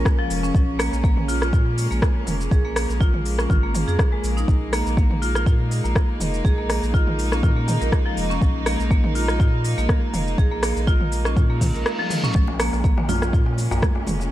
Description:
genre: afro house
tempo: 122 BPM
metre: 4/4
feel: swing 54% on 16ths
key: Bb minor pentatonic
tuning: A4 = 440 Hz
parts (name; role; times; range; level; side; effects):
- clear studio string section; sustained chords; 0.0-14.3 s; Ab3 to Eb4; -30 LUFS; right 1 dB; sidechain pumping
- marimba with hard mallets; arpeggios; 0.0-13.8 s; F3 to Bb4; -27 LUFS; equal; sidechain pumping, digital delay
- warm sub bass; bass; 0.0-14.3 s; F1 to Bb2; -24 LUFS; equal; sidechain pumping
- downlifter and reverse cymbal; sound effects; 0.0-0.5, 11.6-12.3 s; none; -33 LUFS; equal; none
- deep house drum kit; drums; 0.1-14.3 s; hi-hat, rim click, shaker, toms; -27 LUFS; equal; none
- electronic kick drum; drums; 0.1-13.9 s; none; -19 LUFS; equal; none
- congas; percussion; 12.3-14.2 s; none; -31 LUFS; right 4 dB; none
- darbuka; percussion; 12.5-14.3 s; none; -30 LUFS; left 3 dB; none
room: little or no reverb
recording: dark, warm production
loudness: -18 LUFS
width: side -14 dB against mid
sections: 0.0-14.3 A section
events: reverse cymbal 11.6-12.3; break 11.9-12.3; drum fill 12.0-12.3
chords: 0.0 Bbm7

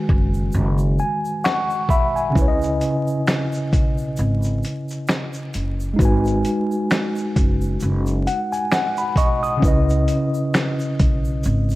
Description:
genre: lo-fi hip hop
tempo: 66 BPM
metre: 4/4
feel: swing 56% on 16ths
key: C# minor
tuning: A4 = 440 Hz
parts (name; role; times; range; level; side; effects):
- mellow tine electric piano; accompaniment; 0.0-11.8 s; C#3 to D#6; -21 LUFS; equal; medium stereo tremolo, cassette tape, low-pass filter
- upright bass; bass; 0.1-11.8 s; F#1 to C#2; -21 LUFS; equal; none
- dusty soul sampler-style drum kit; drums; 0.1-11.8 s; finger snaps, hi-hat, kick drum, shaker, snare drum; -20 LUFS; equal; vintage 12-bit sampler grit
- egg shaker; percussion; 0.3-11.8 s; none; -46 LUFS; right 4 dB; none
room: light reverb, digital ambience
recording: vinyl crackle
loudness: -18 LUFS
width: side -17 dB against mid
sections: 0.0-11.8 A section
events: break 0.0-2.4; tine electric piano fill 0.5-2.4, 8.3-9.6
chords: 0.0 G#m7; 9.6 C#m9

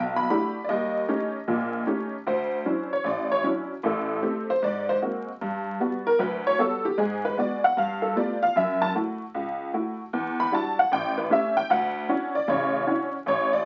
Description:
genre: solo jazz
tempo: 153 BPM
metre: 4/4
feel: swing 66% on 8ths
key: D major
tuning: A4 = 440 Hz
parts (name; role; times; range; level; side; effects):
- honky-tonk upright piano; solo; 0.0-13.7 s; A1 to B5; -26 LUFS; equal; none
room: wet studio ambience, RT60 0.5 s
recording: very old 78 rpm record, vinyl crackle, nothing above 7.7 kHz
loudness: -26 LUFS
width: mono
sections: 0.0-2.3 A section; 2.3-13.7 B section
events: honky-tonk piano solo 2.3-13.7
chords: 0.0 Em11; 0.7 Eb7#11; 2.3 Dmaj9; 3.8 Am7; 4.6 G#9; 5.4 Gmaj7; 7.0 G#m7b5; 7.8 G9; 8.6 F#m7; 10.1 Em9; 10.9 A7; 11.7 Dmaj9

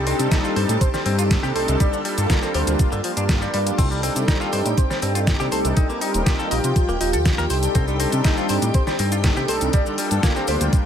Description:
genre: nu-disco, nu disco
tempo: 121 BPM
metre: 4/4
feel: straight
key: C dorian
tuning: A4 = 445 Hz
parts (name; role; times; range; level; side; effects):
- warm analog pad; accompaniment; 0.0-10.8 s; G3 to Bb4; -25 LUFS; equal; chorus, sidechain pumping, dub echo
- string machine, full ensemble; sustained chords; 0.0-10.9 s; G4 to A5; -28 LUFS; equal; ensemble chorus, sidechain pumping
- direct-recorded clean electric guitar; riff; 0.0-10.5 s; D3 to Eb5; -29 LUFS; left 3 dB; wide subtle chorus, dub echo
- fat analog bass; bass; 0.0-10.7 s; Eb1 to C3; -23 LUFS; equal; none
- pop drum kit; drums; 0.1-10.8 s; cabasa, crash cymbal, hi-hat, snare drum; -26 LUFS; equal; overdrive
- electronic kick drum; drums; 0.3-10.8 s; none; -19 LUFS; equal; overdrive
- wide unison lead; melody; 0.8-10.7 s; F4 to D5; -30 LUFS; right 1 dB; dub echo
- cabasa; percussion; 3.8-10.8 s; none; -36 LUFS; left 2 dB; none
room: little or no reverb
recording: none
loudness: -18 LUFS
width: side -9 dB against mid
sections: 0.0-10.9 A section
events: none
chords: 0.0 Cm69; 1.8 Gm7; 3.8 Cm69; 5.8 Eb6; 7.5 Cm69; 9.7 Gm7

